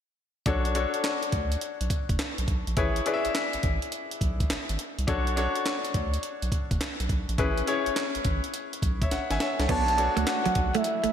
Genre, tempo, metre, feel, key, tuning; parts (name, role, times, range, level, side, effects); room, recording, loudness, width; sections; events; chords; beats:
R&B, new jack swing; 104 BPM; 4/4; swing 66% on 16ths; B dorian; A4 = 439 Hz
clear concert grand piano; accompaniment; 0.5-11.1 s; C#4 to G#5; -29 LUFS; left 4 dB
round analog bass; bass; 0.5-11.1 s; F#1 to D2; -30 LUFS; equal
breakbeat sampler-style drum kit; drums; 0.5-11.1 s; crash cymbal, handclaps, hi-hat, kick drum, snare drum; -29 LUFS; right 1 dB; gated reverb
soft octave-layered synth lead; melody; 9.7-11.1 s; E5 to A5; -26 LUFS; right 2 dB; chorus, tremolo
direct-recorded clean electric guitar; riff; 9.7-11.1 s; F#3 to B3; -29 LUFS; right 8 dB; wide subtle chorus
moderate lush hall reverb, RT60 2.5 s; bright 1980s-style digital production; -25 LUFS; side -9 dB against mid
0.5-9.7 A section; 9.7-11.1 B section
drum fill 9.1-9.7
0.5 Bm7; 2.8 Amaj9; 5.1 Bm7; 7.4 Amaj9; 9.7 Bm7
| 0.46 1.04 1.61 2.19 | 2.77 3.34 3.92 4.50 | 5.08 5.65 6.23 6.80 | 7.38 7.96 8.54 9.11 | 9.69 10.27 10.84